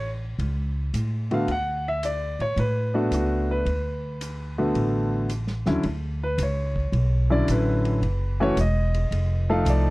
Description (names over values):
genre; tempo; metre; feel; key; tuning
jazz piano trio; 110 BPM; 4/4; swing 68% on 8ths; D major; A4 = 441 Hz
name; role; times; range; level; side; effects
warm baby grand piano; melody; 0.0-9.9 s; D3 to F#5; -25 LUFS; equal; none
upright bass; bass; 0.0-9.9 s; E1 to A2; -24 LUFS; equal; none
vintage drum kit; drums; 0.4-9.8 s; hi-hat, kick drum, ride cymbal, snare drum; -40 LUFS; left 1 dB; none
room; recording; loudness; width
small room ambience; dry, close 1970s-style studio recording; -22 LUFS; side -20 dB against mid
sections
0.0-5.8 A section; 5.8-9.9 B section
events
none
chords
0.0 A; 1.5 D6; 5.8 Dmaj9; 8.0 F#7(no3); 9.1 F7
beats
0.39 0.94 | 1.48 2.03 2.57 3.12 | 3.67 4.21 4.76 5.30 | 5.85 6.39 6.94 7.48 | 8.03 8.57 9.12 9.66